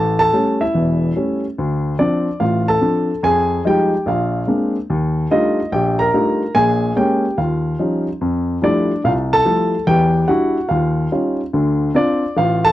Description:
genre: solo jazz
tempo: 145 BPM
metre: 4/4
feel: swing 65% on 8ths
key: D minor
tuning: A4 = 440 Hz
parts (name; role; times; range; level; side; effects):
- warm grand piano; solo; 0.0-12.7 s; E1 to Bb5; -15 LUFS; equal; none
room: little or no reverb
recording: dry, close 1970s-style studio recording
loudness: -15 LUFS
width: side -14 dB against mid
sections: 0.0-1.6 A section; 1.6-12.7 B section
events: none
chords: 0.0 A7; 1.6 Dm7; 3.2 Fm9; 4.1 Bb9; 4.9 Ebmaj9#11; 6.5 Bbm7; 7.4 Eb9; 8.2 Fmaj9; 9.9 Em9; 10.7 Eb9; 11.5 Dm7

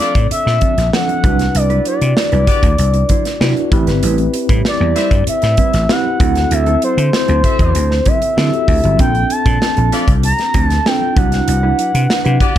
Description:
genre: polished 1980s jazz-funk pop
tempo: 97 BPM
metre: 4/4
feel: straight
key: unclear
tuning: A4 = 437 Hz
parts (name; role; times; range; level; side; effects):
- expressive synth lead; melody; 0.0-12.6 s; C5 to Bb5; -18 LUFS; left 1 dB; chorus, ping-pong delay
- mellow horn section; second line; 0.0-12.6 s; A3 to E5; -24 LUFS; left 3 dB; none
- mellow tine electric piano; accompaniment; 0.0-12.6 s; F3 to B4; -21 LUFS; equal; medium stereo tremolo, analog chorus
- mellow electric guitar; riff; 0.0-12.6 s; F3 to C5; -24 LUFS; right 3 dB; wide subtle chorus
- modern studio drum kit; drums; 0.0-12.6 s; hi-hat, kick drum, snare drum; -16 LUFS; equal; none
- vintage slap bass; bass; 0.2-12.6 s; G1 to D3; -15 LUFS; equal; none
room: studio ambience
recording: dark, warm production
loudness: -12 LUFS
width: side -11 dB against mid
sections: 0.0-12.6 A section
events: none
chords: 0.0 Bbmaj9; 1.2 Cmaj9#11; 3.7 Am9; 6.2 D9; 9.0 Bbmaj9; 11.2 Cmaj9#11

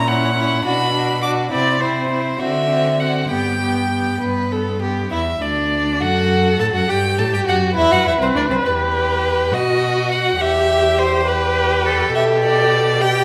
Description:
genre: quick classical-period movement for string quartet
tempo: 68 BPM (dotted quarters)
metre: 6/8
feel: straight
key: G major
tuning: A4 = 441 Hz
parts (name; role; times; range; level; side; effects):
- rich violin; melody; 0.0-13.2 s; A4 to D6; -22 LUFS; equal; none
- warm violin; second line; 0.0-13.2 s; C4 to B4; -24 LUFS; equal; none
- warm viola; accompaniment; 0.0-13.2 s; B3 to B4; -24 LUFS; equal; none
- rich cello; bass; 0.0-13.2 s; C2 to D3; -25 LUFS; equal; none
room: wet scoring stage reverb, RT60 1.5 s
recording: none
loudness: -18 LUFS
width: mono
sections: 0.0-5.1 A section; 5.1-13.2 A section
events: none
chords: 0.0 F#7/A#; 0.6 Bm; 1.5 C; 2.4 D7; 3.3 G; 5.1 Dsus2; 6.0 F#m; 6.9 G; 8.6 Em; 9.5 B; 10.4 Em; 12.1 G/B

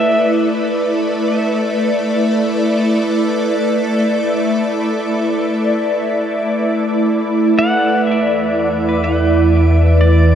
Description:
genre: ambient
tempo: free time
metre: none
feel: none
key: unclear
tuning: A4 = 440 Hz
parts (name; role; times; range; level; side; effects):
- pedal steel guitar; melody; 0.0-0.3, 7.6-10.3 s; D5 to F#5; -21 LUFS; left 1 dB; tape echo
- ethereal airy pad; sustained chords; 0.0-10.3 s; E3 to D5; -15 LUFS; equal; ensemble chorus, built-in reverb, phaser
- bowed-like drone; drone; 0.0-8.2 s; A3 to A4; -24 LUFS; left 1 dB; built-in reverb, phaser
- clean electric guitar; arpeggios; 8.1-9.9 s; B4 to D5; -30 LUFS; equal; phaser, tape echo
- warm sub bass; bass; 8.1-10.3 s; E2; -13 LUFS; equal; none
- drifting glass-harmonics texture; texture; 8.5-10.3 s; D7; -35 LUFS; right 3 dB; chorus, built-in reverb
room: wet huge ambient reverb, RT60 8.0 s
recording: none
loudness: -13 LUFS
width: side -9 dB against mid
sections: 0.0-8.1 A section; 8.1-10.3 B section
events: none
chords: 0.0 Asus4; 8.1 E7(no3)

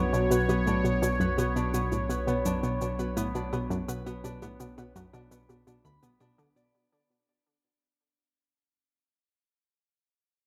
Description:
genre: ambient, sequencer-driven space music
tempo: 84 BPM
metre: 4/4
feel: straight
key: B minor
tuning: A4 = 440 Hz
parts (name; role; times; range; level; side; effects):
- sweeping resonant pad; sustained chords; 0.0-6.7 s; F#3 to C#5; -33 LUFS; equal; chorus, phaser
- concert harp; arpeggios; 0.0-9.1 s; B3 to B5; -39 LUFS; equal; delay
- analog pluck; riff; 0.0-6.7 s; D2 to D3; -33 LUFS; equal; chorus, delay
- round analog bass; bass; 0.0-6.7 s; B1; -37 LUFS; equal; none
- cabasa and bongos; percussion; 0.1-6.7 s; none; -42 LUFS; equal; delay
room: wet spring reverb, RT60 2.6 s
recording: echo-heavy mix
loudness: -28 LUFS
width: mono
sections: 0.0-6.7 A section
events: fade-out 0.0-6.7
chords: 0.0 Bm

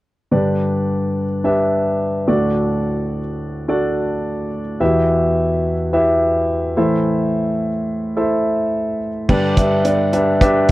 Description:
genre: piano-driven pop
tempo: 107 BPM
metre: 4/4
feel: straight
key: G major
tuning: A4 = 440 Hz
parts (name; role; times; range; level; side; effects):
- warm concert grand piano; accompaniment; 0.3-10.7 s; D2 to E5; -16 LUFS; equal; none
- damped 70s drum kit; drums; 9.3-10.7 s; crash cymbal, hi-hat, kick drum; -18 LUFS; equal; none
room: light reverb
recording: worn, warbling old tape, cassette tape, warbly pitch drift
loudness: -16 LUFS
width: side -17 dB against mid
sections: 0.3-9.3 A section; 9.3-10.7 B section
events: none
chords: 0.3 G; 2.3 D; 4.8 Em; 6.8 Am; 9.3 G

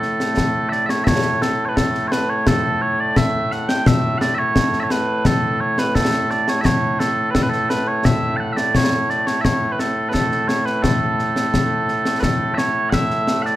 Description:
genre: scottish traditional, Scottish pipe music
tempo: 86 BPM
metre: 2/4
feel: straight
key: A major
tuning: A4 = 441 Hz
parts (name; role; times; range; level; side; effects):
- mellow small bagpipes; melody; 0.0-13.6 s; A2 to A5; -19 LUFS; right 1 dB; none
- concert snare drum and concert bass drum; drums; 0.0-13.5 s; none; -20 LUFS; left 1 dB; none
room: moderate recital hall reverb, RT60 1.5 s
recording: none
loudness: -16 LUFS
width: side -14 dB against mid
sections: 0.0-1.1 A section; 1.1-12.2 A section; 12.2-13.6 B section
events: none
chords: none

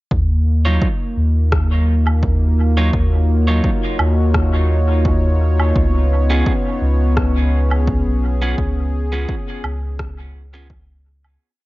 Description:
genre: ambient dub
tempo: 85 BPM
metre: 4/4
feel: swing 55% on 16ths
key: Eb minor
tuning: A4 = 440 Hz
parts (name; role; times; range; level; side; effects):
- warm analog pad; sustained chords; 0.1-11.4 s; Bb3 to Db5; -22 LUFS; equal; chorus
- warm sub bass; bass; 0.1-11.4 s; Cb2 to Eb2; -16 LUFS; equal; none
- electronic kick drum; drums; 0.1-10.9 s; none; -21 LUFS; equal; overdrive, small room ambience
- electric guitar at the edge of break-up; stabs; 0.7-10.7 s; Gb3 to Db5; -25 LUFS; right 2 dB; dub echo
- electronic rim click and woodblock; drums; 1.5-11.4 s; none; -25 LUFS; right 1 dB; small room ambience, dub echo
room: digital ambience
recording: nothing above 7.5 kHz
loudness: -14 LUFS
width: side -19 dB against mid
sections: 0.1-11.4 groove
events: fade-out 7.6-11.4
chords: 0.1 Ebm9; 5.8 Db7

